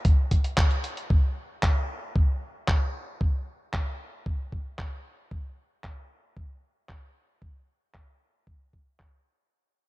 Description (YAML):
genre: italo disco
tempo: 114 BPM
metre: 4/4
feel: straight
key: none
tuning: none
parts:
  - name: dusty soul sampler-style drum kit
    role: drums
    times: 0.0-9.1 s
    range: handclaps, hi-hat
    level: -33 LUFS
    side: equal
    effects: low-pass filter on hats, low-pass filter on snare, low-pass filter on room
  - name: electronic kick drum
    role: drums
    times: 0.1-9.1 s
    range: none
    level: -24 LUFS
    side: equal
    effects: none
room: little or no reverb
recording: dark, warm production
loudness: -25 LUFS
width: side -20 dB against mid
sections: 0.0-9.5 A section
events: fade-out 0.0-9.5; filter sweep on drum 0.0-9.5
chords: none